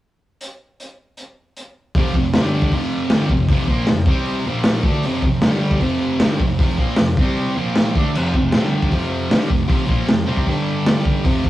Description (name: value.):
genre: garage rock duo or trio.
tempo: 155 BPM.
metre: 4/4.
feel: straight.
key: unclear.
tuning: A4 = 440 Hz.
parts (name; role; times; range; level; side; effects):
crunchy breakbeat drum kit; drums; 0.4-11.5 s; crash cymbal, hi-hat, kick drum, snare drum; -18 LUFS; equal; none.
thick fuzz guitar; riff; 2.0-11.5 s; F2 to D4; -19 LUFS; equal; distortion.
room: wet studio reverb, RT60 0.7 s.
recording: rough rehearsal-room recording.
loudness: -16 LUFS.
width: side -15 dB against mid.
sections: 0.4-1.9 A section; 1.9-11.5 B section.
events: none.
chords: 0.4 N.C.; 1.9 F5; 2.3 G5; 2.7 F5; 4.1 C5; 4.5 Bb5; 4.8 F; 5.4 G5; 5.8 F5; 7.2 C5; 7.6 Bb5; 7.9 F; 8.5 G5; 8.9 F5; 10.5 G5.